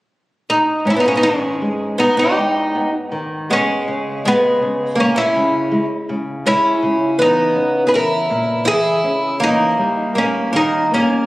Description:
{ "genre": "fado-style ballad", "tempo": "80 BPM", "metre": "4/4", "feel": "rubato", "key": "G# harmonic minor", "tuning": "A4 = 440 Hz", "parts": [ { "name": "oud", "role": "melody", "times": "0.5-11.3 s", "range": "B3 to B4", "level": "-17 LUFS", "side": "equal", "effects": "tape echo" }, { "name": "picked twelve-string acoustic guitar", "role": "second line", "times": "0.9-11.3 s", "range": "G#3 to G#4", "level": "-18 LUFS", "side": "right 1 dB", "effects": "none" }, { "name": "nylon-string guitar", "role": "accompaniment", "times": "0.9-11.3 s", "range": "G#2 to C#4", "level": "-23 LUFS", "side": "left 1 dB", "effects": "none" } ], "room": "moderate scoring stage reverb, RT60 1.6 s", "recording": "recorded on a phone in the room, club reverb", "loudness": "-14 LUFS", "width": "side -18 dB against mid", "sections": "0.9-11.3 A section", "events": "none", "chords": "0.0 N.C.; 0.9 G#m; 3.9 C#m; 6.8 A#dim; 9.8 D#" }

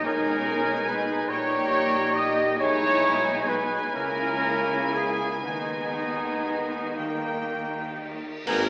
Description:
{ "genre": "classical, slow romantic movement for symphony orchestra", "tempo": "39-49 BPM (dotted quarters)", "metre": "6/8", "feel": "rubato", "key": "G# minor", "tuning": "A4 = 437 Hz", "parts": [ { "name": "bright clarinet", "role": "second line", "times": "0.0-8.6 s", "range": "D#4 to E4", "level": "-35 LUFS", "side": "equal", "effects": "none" }, { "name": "mellow large flute ensemble", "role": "second line", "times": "0.0-8.7 s", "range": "D#4 to A#5", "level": "-34 LUFS", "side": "equal", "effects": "none" }, { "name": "warm oboe", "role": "second line", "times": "0.0-8.6 s", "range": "G5 to A#5", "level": "-33 LUFS", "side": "equal", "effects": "none" }, { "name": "warm symphonic violin section", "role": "second line", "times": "0.0-8.7 s", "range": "G#3 to A#4", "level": "-35 LUFS", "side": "equal", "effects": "none" }, { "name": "warm bassoon", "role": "accompaniment", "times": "0.0-8.6 s", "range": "G3 to B3", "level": "-34 LUFS", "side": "equal", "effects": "none" }, { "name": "warm symphonic viola section", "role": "accompaniment", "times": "0.0-8.7 s", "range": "G#3 to A#4", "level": "-36 LUFS", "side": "equal", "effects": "none" }, { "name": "mellow French horn section", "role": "sustained chords", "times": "0.0-8.7 s", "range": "G3 to E4", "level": "-35 LUFS", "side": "equal", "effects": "none" }, { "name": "concert harp", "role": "arpeggios", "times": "0.0-8.7 s", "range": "G#2 to D#5", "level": "-43 LUFS", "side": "equal", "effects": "none" }, { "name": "dark trumpet section", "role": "stabs", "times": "0.0-8.0 s", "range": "D#4 to D#5", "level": "-26 LUFS", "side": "equal", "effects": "none" }, { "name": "rich symphonic cello section", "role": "bass", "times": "0.0-8.7 s", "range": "G#2 to D#3", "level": "-36 LUFS", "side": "equal", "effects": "none" }, { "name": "warm studio double bass section", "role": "bass", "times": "0.0-8.7 s", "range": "G#1 to D#2", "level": "-40 LUFS", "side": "equal", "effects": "none" }, { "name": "rich symphonic violin section", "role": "melody", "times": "0.1-8.7 s", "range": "A#4 to G#5", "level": "-36 LUFS", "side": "equal", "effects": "none" }, { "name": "cymbal swell, clash cymbals and concert bass drum", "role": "percussion", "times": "5.4-8.7 s", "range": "none", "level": "-36 LUFS", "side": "equal", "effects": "none" }, { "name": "clear tuba", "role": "bass", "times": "8.5-8.7 s", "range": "G#1", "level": "-28 LUFS", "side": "equal", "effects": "none" } ], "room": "wet scoring stage reverb, RT60 2.0 s", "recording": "AM radio sound", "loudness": "-23 LUFS", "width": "side -36 dB against mid", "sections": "0.0-8.5 A section", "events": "band accent 8.5", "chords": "0.1 G#m/B; 1.3 D#7/A#; 2.6 G#m/B; 3.9 A#m7b5/C#; 5.5 G#m/D#; 7.0 D#" }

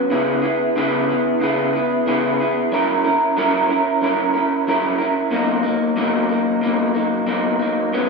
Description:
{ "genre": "indie pop", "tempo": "92 BPM", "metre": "4/4", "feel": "straight", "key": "B major", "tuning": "A4 = 440 Hz", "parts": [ { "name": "electric guitar through a small old amp", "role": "solo", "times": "0.0-8.1 s", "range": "A2 to A#4", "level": "-16 LUFS", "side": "equal", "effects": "vibrato effect" } ], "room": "wet recital hall reverb, RT60 1.4 s", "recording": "recorded in a church or concert hall, studio reverb, faint mains hum", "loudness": "-16 LUFS", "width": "side -3 dB against mid", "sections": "0.0-5.3 A section; 5.3-8.1 B section", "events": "none", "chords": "0.1 C#m7; 2.7 F#7; 5.3 Bmaj7" }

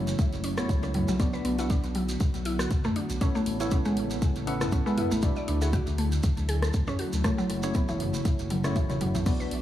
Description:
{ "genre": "afro house", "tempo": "119 BPM", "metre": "4/4", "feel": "swing 55% on 16ths", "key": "unclear", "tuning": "A4 = 440 Hz", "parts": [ { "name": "ethereal airy pad", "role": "sustained chords", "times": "0.0-9.6 s", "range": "C#3 to F#4", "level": "-36 LUFS", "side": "equal", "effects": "ensemble chorus, built-in reverb, sidechain pumping" }, { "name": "tine electric piano", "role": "stabs", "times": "0.0-9.6 s", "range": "A3 to F#5", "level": "-34 LUFS", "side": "equal", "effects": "overdrive, fast stereo tremolo, sidechain pumping, analog delay" }, { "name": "round analog bass", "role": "bass", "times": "0.0-9.6 s", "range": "E1 to D2", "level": "-31 LUFS", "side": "equal", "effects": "sidechain pumping" }, { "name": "deep house drum kit", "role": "drums", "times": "0.1-9.6 s", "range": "crash cymbal, hi-hat, rim click, toms", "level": "-35 LUFS", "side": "equal", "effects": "analog delay" }, { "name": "shekere", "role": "percussion", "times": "0.1-9.5 s", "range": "none", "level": "-42 LUFS", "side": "right 4 dB", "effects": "analog delay" }, { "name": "electronic kick drum", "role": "drums", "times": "0.2-9.4 s", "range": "none", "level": "-27 LUFS", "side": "equal", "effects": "none" }, { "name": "mallet-like synth pluck", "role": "arpeggios", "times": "0.4-9.5 s", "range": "C#3 to D5", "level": "-31 LUFS", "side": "equal", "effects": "chorus, sidechain pumping, dub echo" } ], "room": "light reverb, digital ambience", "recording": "echo-heavy mix, small room ambience", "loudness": "-25 LUFS", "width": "side -12 dB against mid", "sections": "0.0-9.6 A section", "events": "drum fill 8.5-9.3", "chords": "0.0 F#m7; 1.2 Bm; 3.2 Aadd9; 5.2 Dadd9; 7.2 F#m7" }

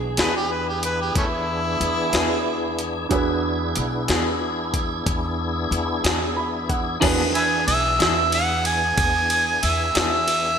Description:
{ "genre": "slow blues", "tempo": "61 BPM (dotted quarters)", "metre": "12/8", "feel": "straight", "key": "E mixolydian", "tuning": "A4 = 440 Hz", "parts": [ { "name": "electric guitar through a small old amp", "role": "melody", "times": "0.0-6.4 s", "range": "G#4", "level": "-34 LUFS", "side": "right 4 dB", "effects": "slapback echo, digital delay" }, { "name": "warm baby grand piano", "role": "accompaniment", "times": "0.0-10.6 s", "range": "D4 to B5", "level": "-28 LUFS", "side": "right 6 dB", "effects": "slapback echo" }, { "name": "tonewheel organ", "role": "sustained chords", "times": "0.0-10.6 s", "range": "D#3 to G#4", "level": "-27 LUFS", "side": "left 1 dB", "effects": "slow rotary speaker, overdrive, chorus vibrato" }, { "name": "upright bass", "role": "bass", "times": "0.0-10.6 s", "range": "B1 to E2", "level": "-29 LUFS", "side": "left 1 dB", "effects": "none" }, { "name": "warm harmonica", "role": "second line", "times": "0.2-10.6 s", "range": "A3 to G#5", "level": "-21 LUFS", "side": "right 1 dB", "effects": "overdrive, slapback echo" }, { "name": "electric guitar through a small old amp", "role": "accompaniment", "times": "0.2-10.2 s", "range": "E3 to G#4", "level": "-27 LUFS", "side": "left 2 dB", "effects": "tremolo, slapback echo" }, { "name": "jungle sampler-style drum kit", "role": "drums", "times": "0.2-10.4 s", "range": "crash cymbal, hi-hat, kick drum, ride cymbal, snare drum", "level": "-24 LUFS", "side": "equal", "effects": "none" } ], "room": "moderate lush hall reverb, RT60 2.1 s", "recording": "big arena sound", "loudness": "-19 LUFS", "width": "side -7 dB against mid", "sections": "0.0-7.0 A section; 7.0-10.6 B section", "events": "grand piano fill 6.0-7.0; harmonica solo 7.0-10.6", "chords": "0.0 E7" }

